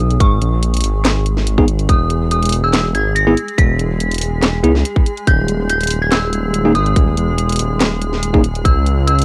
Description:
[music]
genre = deep dubstep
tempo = 142 BPM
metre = 4/4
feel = half-time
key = unclear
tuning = A4 = 435 Hz
[part]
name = dark detuned synth bell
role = melody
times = 0.0-9.2 s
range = C#6 to B6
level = -23 LUFS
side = equal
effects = chorus, cassette tape, dub echo
[part]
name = granular cloud pad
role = sustained chords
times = 0.1-9.2 s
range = G#3 to G#4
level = -27 LUFS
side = equal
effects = built-in reverb, cassette tape
[part]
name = dark detuned saw bass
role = bass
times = 0.0-9.2 s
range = D#1 to C#2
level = -19 LUFS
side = equal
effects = none
[part]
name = garage drum kit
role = drums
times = 0.1-9.2 s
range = handclaps, hi-hat, snare drum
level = -22 LUFS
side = equal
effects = cassette tape
[part]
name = electronic kick drum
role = drums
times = 0.2-8.7 s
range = none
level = -15 LUFS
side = equal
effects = cassette tape
[part]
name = bell-like tine electric piano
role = stabs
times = 1.6-8.4 s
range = A#3 to G#4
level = -19 LUFS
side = equal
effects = vintage 12-bit sampler grit, cassette tape, dub echo
[sound]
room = light reverb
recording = home recording on cassette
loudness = -15 LUFS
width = mono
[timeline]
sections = 0.0-9.2 A section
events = none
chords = 0.0 G#m; 1.9 E; 5.3 D#sus4; 8.7 C#m

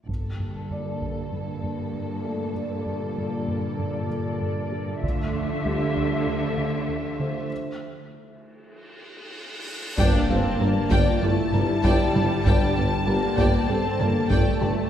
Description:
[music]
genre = cinematic, hybrid orchestral and electronic film score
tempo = 97 BPM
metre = 4/4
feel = straight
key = G dorian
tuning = A4 = 440 Hz
[part]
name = rich symphonic violin section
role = melody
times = 0.1-14.9 s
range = D5 to A5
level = -34 LUFS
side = left 3 dB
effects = low-pass filter
[part]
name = warm symphonic violin section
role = second line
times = 0.1-14.7 s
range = F4 to G5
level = -33 LUFS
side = left 2 dB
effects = none
[part]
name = rich symphonic viola section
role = accompaniment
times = 0.1-14.9 s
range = G3 to D4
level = -31 LUFS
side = right 1 dB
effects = low-pass filter
[part]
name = warbly tape-like pad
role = sustained chords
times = 0.1-14.9 s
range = Bb2 to A5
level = -33 LUFS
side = equal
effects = chorus, built-in reverb, low-pass filter
[part]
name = plucky analog bass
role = riff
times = 0.1-14.8 s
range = D2 to G3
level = -31 LUFS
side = right 1 dB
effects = low-pass filter
[part]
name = rich symphonic double bass section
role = bass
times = 0.1-0.7, 5.0-5.6, 10.0-14.7 s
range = G1 to D2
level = -30 LUFS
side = right 1 dB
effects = none
[part]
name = warm symphonic cello section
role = bass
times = 0.1-14.7 s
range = G2 to D3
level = -30 LUFS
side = right 1 dB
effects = none
[part]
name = solo taiko drums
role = drums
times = 0.1-1.3, 5.0-6.2, 10.0-14.9 s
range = none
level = -26 LUFS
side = equal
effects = none
[part]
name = felt-muted upright piano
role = texture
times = 0.7-14.9 s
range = G3 to A5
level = -37 LUFS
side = left 1 dB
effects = tape echo
[part]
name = cymbal swell and impact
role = sound effects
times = 8.7-12.5 s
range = none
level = -34 LUFS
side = equal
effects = none
[part]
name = bright trombone section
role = sustained chords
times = 10.0-14.9 s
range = D3 to G3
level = -35 LUFS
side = right 2 dB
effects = none
[part]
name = mellow French horn section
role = sustained chords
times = 10.0-14.9 s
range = Bb3 to A4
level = -28 LUFS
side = left 3 dB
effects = low-pass filter
[part]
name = warm tuba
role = bass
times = 10.0-14.7 s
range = G1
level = -30 LUFS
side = right 1 dB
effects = none
[sound]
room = wet scoring stage reverb, RT60 1.9 s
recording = heard from further back in the room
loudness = -22 LUFS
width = side -10 dB against mid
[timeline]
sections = 0.1-10.0 A section; 10.0-14.9 B section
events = filter sweep 0.1-10.0; break 7.5-10.0; cymbal swell 8.7-10.0; impact 10.0-12.5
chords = 0.1 Gmadd9; 5.0 Dmadd9; 7.5 N.C.; 10.0 Gmadd9

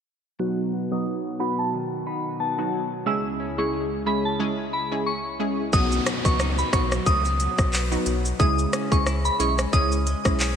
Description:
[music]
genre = dancehall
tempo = 90 BPM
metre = 4/4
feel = swing 56% on 16ths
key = unclear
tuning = A4 = 440 Hz
[part]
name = soft synth bell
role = melody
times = 0.4-10.2 s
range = A5 to F#6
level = -27 LUFS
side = equal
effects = chorus, phaser, low-pass filter, ping-pong delay
[part]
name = analog pluck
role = accompaniment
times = 0.4-10.5 s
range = F#3 to G#4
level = -27 LUFS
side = right 1 dB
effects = chorus, sidechain pumping, low-pass filter
[part]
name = airy breathy pad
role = sustained chords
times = 0.4-5.7 s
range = C#2 to F#5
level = -34 LUFS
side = right 2 dB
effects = chorus, low-pass filter
[part]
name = semi-hollow electric guitar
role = arpeggios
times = 0.4-10.6 s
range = B2 to E4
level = -33 LUFS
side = left 7 dB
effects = analog chorus, low-pass filter, ping-pong delay
[part]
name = sub bass with octave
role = bass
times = 5.7-10.6 s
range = B1 to C#2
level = -26 LUFS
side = equal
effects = none
[part]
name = island pop drum kit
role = drums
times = 5.7-10.6 s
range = handclaps, hi-hat, kick drum, rim click, shaker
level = -24 LUFS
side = equal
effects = gated reverb
[part]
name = downlifter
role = sound effects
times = 5.7-10.6 s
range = none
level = -34 LUFS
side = equal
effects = none
[sound]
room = moderate lush hall reverb, RT60 2.7 s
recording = bright 1980s-style digital production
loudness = -21 LUFS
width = side -8 dB against mid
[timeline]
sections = 0.4-5.7 A section; 5.7-10.6 B section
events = filter sweep 0.4-5.7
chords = 0.4 B; 3.1 C#m; 5.7 B; 8.4 C#m

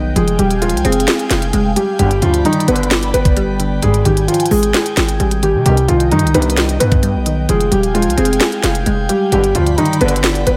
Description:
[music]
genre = hip hop, trap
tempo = 131 BPM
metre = 4/4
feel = half-time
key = unclear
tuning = A4 = 439 Hz
[part]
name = felt-muted upright piano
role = melody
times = 0.0-10.6 s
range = Eb3 to B4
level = -19 LUFS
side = equal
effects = low-pass filter, delay
[part]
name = glassy wavetable pluck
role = accompaniment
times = 0.0-10.6 s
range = G2 to Eb4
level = -21 LUFS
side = equal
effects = chorus, low-pass filter
[part]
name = airy breathy pad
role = sustained chords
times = 0.0-10.6 s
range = D5 to B5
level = -28 LUFS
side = equal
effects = chorus, phaser
[part]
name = distorted 808-style bass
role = bass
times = 0.0-10.6 s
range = Eb1 to C3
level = -20 LUFS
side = equal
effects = distortion
[part]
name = trap drum kit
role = drums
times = 0.2-10.6 s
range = hi-hat, kick drum, snare drum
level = -20 LUFS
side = equal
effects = none
[part]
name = warm brass ensemble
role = stabs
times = 2.0-10.4 s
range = G2 to Eb3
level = -26 LUFS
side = equal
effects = none
[sound]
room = light reverb, digital ambience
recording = none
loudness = -14 LUFS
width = mono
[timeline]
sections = 0.0-10.6 A section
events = none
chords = 0.2 Fmadd9; 2.0 G; 3.8 Abmaj7(no3); 5.7 Cm; 7.5 Fmadd9; 9.3 G

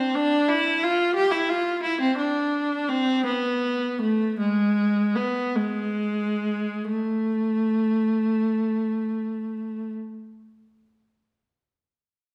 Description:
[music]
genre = classical, baroque-style suite movement for unaccompanied viola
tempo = 44-62 BPM (dotted quarters)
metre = 12/8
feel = rubato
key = A minor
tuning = A4 = 439 Hz
[part]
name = clear viola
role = solo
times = 0.0-9.9 s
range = G#3 to G4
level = -24 LUFS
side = equal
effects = none
[sound]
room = wet recital hall reverb, RT60 1.5 s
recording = heard from further back in the room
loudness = -24 LUFS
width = mono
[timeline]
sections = 0.0-6.9 A section; 6.9-12.2 B section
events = slowing down 0.0-6.9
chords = none

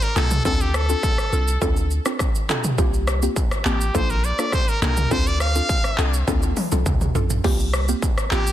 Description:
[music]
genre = afrobeats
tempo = 103 BPM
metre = 4/4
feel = straight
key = unclear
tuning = A4 = 438 Hz
[part]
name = brilliant trumpet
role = melody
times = 0.0-8.5 s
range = G4 to F5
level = -25 LUFS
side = equal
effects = ping-pong delay
[part]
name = industrial drum kit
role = drums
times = 0.0-8.5 s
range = crash cymbal, handclaps, hi-hat, kick drum, rim click, shaker, toms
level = -22 LUFS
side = equal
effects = distortion
[part]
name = mallet-like synth pluck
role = accompaniment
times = 0.2-8.5 s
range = Bb3 to A4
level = -27 LUFS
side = left 1 dB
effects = chorus, phaser
[part]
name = punchy sub bass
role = bass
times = 0.2-8.5 s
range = A1 to D2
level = -22 LUFS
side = equal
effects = none
[sound]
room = little or no reverb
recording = dense, heavily limited modern master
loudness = -18 LUFS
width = side -12 dB against mid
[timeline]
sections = 0.0-8.5 A section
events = drum fill 6.3-7.4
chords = 0.5 Dm7; 2.8 C7sus4; 3.9 Bbmaj7; 7.4 C7sus4

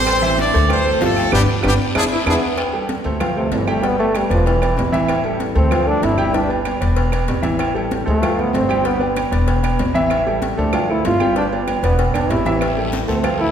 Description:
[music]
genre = latin, salsa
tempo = 191 BPM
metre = 4/4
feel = straight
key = A minor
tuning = A4 = 440 Hz
[part]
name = brilliant horn section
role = melody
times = 0.0-2.3 s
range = G3 to D5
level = -19 LUFS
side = equal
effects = none
[part]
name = warm grand piano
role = accompaniment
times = 0.0-13.5 s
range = E3 to G5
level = -21 LUFS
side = right 1 dB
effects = none
[part]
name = upright bass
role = bass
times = 0.0-13.5 s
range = E1 to E2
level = -21 LUFS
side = equal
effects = none
[part]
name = agogo bells and timbales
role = percussion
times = 0.1-13.4 s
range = none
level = -26 LUFS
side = right 3 dB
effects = none
[part]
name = claves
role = percussion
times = 0.1-13.4 s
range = none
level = -33 LUFS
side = right 5 dB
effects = none
[part]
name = congas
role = percussion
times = 0.1-13.5 s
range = none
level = -27 LUFS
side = left 1 dB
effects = none
[part]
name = cowbell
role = percussion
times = 0.1-13.4 s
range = none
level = -28 LUFS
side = left 3 dB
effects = none
[part]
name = guiro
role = percussion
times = 0.1-2.3, 12.6-13.5 s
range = none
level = -32 LUFS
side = left 4 dB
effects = none
[part]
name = brilliant trombone section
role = second line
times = 2.1-2.6 s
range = B3 to E4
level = -25 LUFS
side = equal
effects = none
[part]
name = clear trombone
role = melody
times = 3.4-13.5 s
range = C3 to F4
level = -21 LUFS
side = equal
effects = none
[sound]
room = wet scoring stage reverb, RT60 1.7 s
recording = recorded in a church or concert hall, faint mains hum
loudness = -15 LUFS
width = side -8 dB against mid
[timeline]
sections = 0.0-2.6 A section; 2.6-13.5 B section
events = band accent 1.3-2.6; drum fill 1.6-2.6, 12.1-12.6; trombone solo 2.6-13.5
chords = 0.1 Am7; 0.7 Dm7; 1.3 G; 2.0 E7; 2.6 Am7; 3.2 Dm7; 3.8 G; 4.5 E5; 5.1 Am7; 5.7 Dm7; 6.3 G; 7.0 E5; 7.6 Am7; 8.2 Dm7; 8.9 G; 9.5 E5; 10.1 Am7; 10.7 Dm7; 11.4 G; 12.0 E7; 12.6 Am7

